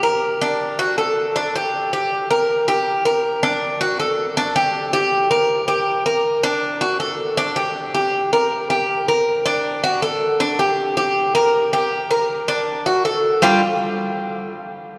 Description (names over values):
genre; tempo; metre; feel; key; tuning
latin; 159 BPM; 4/4; straight; G minor; A4 = 440 Hz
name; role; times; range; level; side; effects
Cuban tres; solo; 0.0-13.6 s; G3 to Bb4; -19 LUFS; equal; none
room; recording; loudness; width
wet cathedral reverb, RT60 4.6 s; recorded in a church or concert hall; -19 LUFS; mono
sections
0.0-1.4 A section; 1.4-13.4 A section; 13.4-14.9 B section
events
none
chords
0.0 Gm (rootless); 0.6 D; 1.4 G5; 2.1 Gm; 3.6 D; 4.4 G5; 5.1 Gm; 6.6 D; 7.4 G5; 8.1 Gm; 9.6 D; 10.4 G5; 11.2 Gm; 12.7 D; 13.4 G5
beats
0.22 0.60 0.97 | 1.35 1.73 2.10 2.48 | 2.86 3.23 3.61 3.99 | 4.36 4.74 5.12 5.49 | 5.87 6.25 6.62 7.00 | 7.38 7.75 8.13 8.51 | 8.89 9.26 9.64 10.02 | 10.40 10.78 11.15 11.53 | 11.91 12.29 12.67 13.04 | 13.42